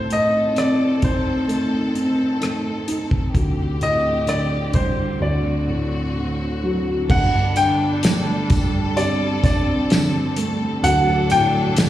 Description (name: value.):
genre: pop ballad.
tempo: 64 BPM.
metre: 4/4.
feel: straight.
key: unclear.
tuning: A4 = 440 Hz.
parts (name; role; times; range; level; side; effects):
bright concert grand piano; melody; 0.0-11.9 s; C5 to G5; -22 LUFS; left 1 dB; slapback echo, tape echo.
felt-muted upright piano; accompaniment; 0.0-11.9 s; D1 to G4; -21 LUFS; equal; none.
clear studio string section; sustained chords; 0.0-11.9 s; D3 to A4; -26 LUFS; left 1 dB; none.
damped 70s drum kit; drums; 0.1-11.9 s; crash cymbal, hi-hat, kick drum, rim click, snare drum; -21 LUFS; equal; none.
tambourine; percussion; 7.6-11.9 s; none; -35 LUFS; left 1 dB; none.
room: light reverb, small room ambience.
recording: live gig heard through the venue's PA, recital hall reverb.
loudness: -17 LUFS.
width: side -13 dB against mid.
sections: 0.0-7.1 A section; 7.1-11.9 B section.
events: none.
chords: 0.0 Adim; 3.3 D7sus4; 5.2 D7; 7.1 Gsus2; 10.8 D.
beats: 0.56 1.48 2.41 | 3.34 4.27 5.21 6.15 | 7.10 8.03 8.97 9.91 | 10.84 11.77.